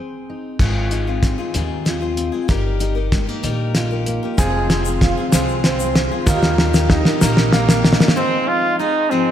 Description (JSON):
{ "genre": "indie folk with a building arrangement", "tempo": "64 BPM (dotted quarters)", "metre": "6/8", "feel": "straight", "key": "Ab major", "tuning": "A4 = 439 Hz", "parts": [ { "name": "fingerpicked steel-string acoustic guitar", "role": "accompaniment", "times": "0.0-6.3 s", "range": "G2 to Ab4", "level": "-27 LUFS", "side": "left 1 dB", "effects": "slapback echo" }, { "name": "picked steel-string acoustic guitar", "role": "accompaniment", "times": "0.6-9.3 s", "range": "Ab2 to Bb4", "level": "-24 LUFS", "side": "left 7 dB", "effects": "slapback echo" }, { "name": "upright bass", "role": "bass", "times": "0.6-7.9 s", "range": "F1 to Eb2", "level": "-22 LUFS", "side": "equal", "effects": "none" }, { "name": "cloth-damped thuddy drum kit", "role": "drums", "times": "0.6-8.2 s", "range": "crash cymbal, hi-hat, kick drum, snare drum", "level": "-17 LUFS", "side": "equal", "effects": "none" }, { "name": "bright grand piano", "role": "accompaniment", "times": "4.4-8.2 s", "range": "F1 to C5", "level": "-28 LUFS", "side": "right 5 dB", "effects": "slapback echo" }, { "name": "mellow tonewheel organ", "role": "sustained chords", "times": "4.4-9.3 s", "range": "G4 to C6", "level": "-29 LUFS", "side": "left 1 dB", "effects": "slow rotary speaker" }, { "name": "warm upright piano", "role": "arpeggios", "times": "4.4-8.1 s", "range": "Bb3 to Ab4", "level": "-23 LUFS", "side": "right 4 dB", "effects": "slapback echo" }, { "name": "egg shaker", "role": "percussion", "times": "4.4-7.9 s", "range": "none", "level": "-30 LUFS", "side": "left 10 dB", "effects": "none" }, { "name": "warm flugelhorn", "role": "melody", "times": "8.2-9.3 s", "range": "C4 to F4", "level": "-17 LUFS", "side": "right 2 dB", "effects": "slapback echo" } ], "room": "moderate lush hall reverb, RT60 1.7 s, studio ambience", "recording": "big arena sound, faint mains hum", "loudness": "-15 LUFS", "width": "side -10 dB against mid", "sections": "0.6-8.2 A section; 8.2-9.3 B section", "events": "build-up 0.6-8.2; drum fill 0.6-8.2", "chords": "0.0 Ab; 0.6 Ab6; 2.5 Eb/G; 4.4 Fm; 6.3 Eb; 8.2 Ab6", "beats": "| 0.60 1.55 | 2.50 3.44 | 4.39 5.33 | 6.28 7.22 | 8.16 9.10" }